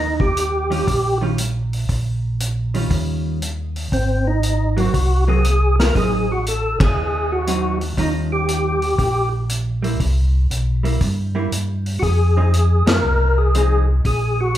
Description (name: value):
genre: soul jazz organ trio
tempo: 118 BPM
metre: 4/4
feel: swing 68% on 8ths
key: Eb mixolydian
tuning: A4 = 440 Hz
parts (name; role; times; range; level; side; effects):
- percussive tonewheel organ; melody; 0.0-14.6 s; C4 to Bb4; -20 LUFS; equal; chorus vibrato, slow rotary speaker
- mellow tonewheel organ; bass; 0.0-14.6 s; Ab1 to G2; -19 LUFS; equal; slow rotary speaker
- vintage drum kit; drums; 0.2-14.6 s; hi-hat, kick drum, ride cymbal, snare drum; -23 LUFS; equal; none
- vintage hollow-body jazz guitar; accompaniment; 0.7-13.9 s; Eb3 to Ab4; -24 LUFS; right 2 dB; none
room: moderate large studio reverb, RT60 0.9 s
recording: band playing live in one room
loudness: -16 LUFS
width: side -12 dB against mid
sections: 0.0-14.6 A section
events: band accent 6.7, 12.8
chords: 0.0 Eb9; 3.9 Ab9; 5.9 Adim7; 8.0 Eb9; 10.0 C7; 12.0 Fm7; 14.0 Bb7(no3)